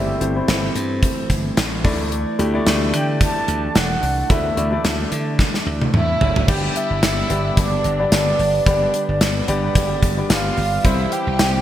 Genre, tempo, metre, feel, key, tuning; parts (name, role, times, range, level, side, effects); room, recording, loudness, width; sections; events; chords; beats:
1980s-style pop; 110 BPM; 4/4; swing 55% on 16ths; G mixolydian from 6.5 s; A4 = 440 Hz
mellow horn-like synth lead; melody; 0.0-11.6 s; D5 to A5; -24 LUFS; right 1 dB; chorus, digital delay
warm concert grand piano; accompaniment; 0.0-11.6 s; G3 to E5; -24 LUFS; left 2 dB
warm analog pad; sustained chords; 0.0-11.6 s; D3 to D4; -28 LUFS; right 2 dB; chorus
slap bass; bass; 0.0-11.6 s; E1 to D3; -23 LUFS; equal
gated 80s drum kit; drums; 0.2-11.5 s; crash cymbal, hi-hat, kick drum, snare drum, tambourine, toms; -20 LUFS; equal
rich studio violin section; second line; 5.9-11.6 s; D4 to G4; -30 LUFS; equal; digital delay
moderate lush hall reverb, RT60 2.5 s; bright 1980s-style digital production; -16 LUFS; side -12 dB against mid
0.0-6.5 A section; 6.5-11.6 B section
drum fill 5.4-6.5
0.0 Am; 1.8 Dsus2; 6.5 G; 10.8 C
0.48 1.03 1.57 | 2.12 2.66 3.21 3.75 | 4.30 4.85 5.39 5.94 | 6.48 7.03 7.57 8.12 | 8.66 9.21 9.76 10.30 | 10.85 11.39